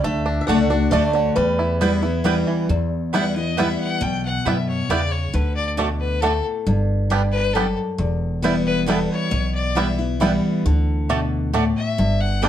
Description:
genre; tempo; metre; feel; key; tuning
bluegrass; 136 BPM; 3/4; straight; E dorian; A4 = 443 Hz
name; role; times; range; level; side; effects
bluegrass banjo; melody; 0.0-12.5 s; D3 to E4; -26 LUFS; right 4 dB; none
picked swing-style acoustic guitar; melody; 0.0-2.2 s; B4 to F#5; -24 LUFS; right 2 dB; none
picked steel-string acoustic guitar; accompaniment; 0.0-12.5 s; E2 to G4; -22 LUFS; left 1 dB; none
upright bass; bass; 0.0-12.5 s; E1 to F#2; -23 LUFS; equal; none
mandolin; stabs; 0.5-12.5 s; A3 to A5; -26 LUFS; right 7 dB; none
clear fiddle; second line; 3.1-12.5 s; A4 to G5; -26 LUFS; left 5 dB; none
room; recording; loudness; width
light reverb; dark, warm production; -18 LUFS; side -10 dB against mid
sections
0.0-2.7 A section; 2.7-12.5 B section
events
fiddle solo 2.7-12.5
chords
0.0 D; 1.4 Em; 5.3 D; 6.7 G; 8.0 Em; 10.7 D; 12.0 G

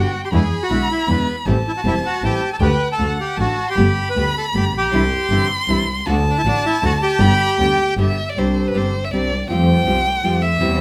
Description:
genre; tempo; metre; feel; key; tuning
tango; 158 BPM; 3/4; rubato; G major; A4 = 436 Hz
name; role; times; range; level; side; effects
bandoneon; melody; 0.0-7.9 s; B3 to B4; -23 LUFS; equal; plate reverb
rich violin; second line; 0.0-10.8 s; B4 to C6; -25 LUFS; equal; none
nylon-string guitar; accompaniment; 0.0-10.8 s; B2 to G4; -25 LUFS; equal; none
muted studio string section; stabs; 0.0-10.8 s; G#3 to G4; -32 LUFS; equal; none
clear double bass; bass; 0.0-10.8 s; E1 to F2; -22 LUFS; equal; none
room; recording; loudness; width
moderate studio reverb, RT60 0.5 s; none; -18 LUFS; mono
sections
0.0-8.4 A section; 8.4-10.8 B section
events
violin solo 8.4-10.8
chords
0.3 E7; 1.5 Am7; 2.6 Dsus4; 3.0 D; 3.8 Gadd9; 4.9 Cadd9; 6.1 D; 7.2 G; 8.4 Csus2; 9.5 Fadd9

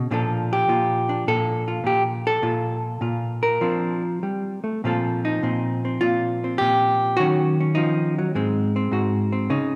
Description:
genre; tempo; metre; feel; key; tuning
solo jazz; 103 BPM; 4/4; swing 69% on 8ths, rubato; Bb major; A4 = 440 Hz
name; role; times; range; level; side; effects
hollow-body jazz guitar; solo; 0.0-9.8 s; Ab2 to Bb4; -22 LUFS; equal; none
room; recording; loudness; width
wet scoring stage reverb, RT60 1.8 s; recorded in a church or concert hall; -22 LUFS; mono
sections
0.0-4.8 A section; 4.8-9.8 A section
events
none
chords
0.1 Bbmaj7; 3.6 F69; 4.8 Bbsus2; 7.2 Ebm7; 8.4 Ab7

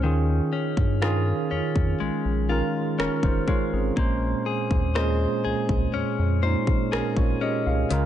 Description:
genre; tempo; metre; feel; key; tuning
contemporary R&B; 61 BPM; 4/4; straight; Bb minor; A4 = 441 Hz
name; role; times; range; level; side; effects
tine electric piano; accompaniment; 0.0-8.1 s; Bb2 to F5; -26 LUFS; right 4 dB; medium stereo tremolo
direct-recorded clean electric guitar; arpeggios; 0.0-8.1 s; Db3 to C5; -29 LUFS; left 8 dB; digital delay
rubbery square bass; bass; 0.0-8.1 s; F1 to G2; -25 LUFS; equal; none
pop drum kit; drums; 0.8-8.1 s; hi-hat, kick drum, rim click; -26 LUFS; equal; none
room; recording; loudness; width
digital ambience; nothing above 10.3 kHz; -22 LUFS; side -11 dB against mid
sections
0.0-8.1 A section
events
none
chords
0.0 Eb9sus4; 4.0 Bbm9

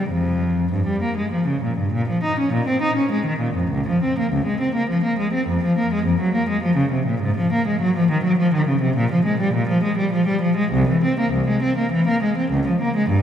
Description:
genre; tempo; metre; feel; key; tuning
classical, baroque-style suite movement for unaccompanied cello; 102 BPM; 3/4; rubato; Bb minor, F minor from 9.0 s; A4 = 441 Hz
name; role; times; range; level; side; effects
rich cello; solo; 0.0-13.2 s; C2 to Eb4; -18 LUFS; equal; none
room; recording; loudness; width
wet church reverb, RT60 3.2 s; recorded in a church or concert hall; -18 LUFS; side -9 dB against mid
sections
0.0-1.9 A section; 1.9-13.2 A section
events
none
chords
none

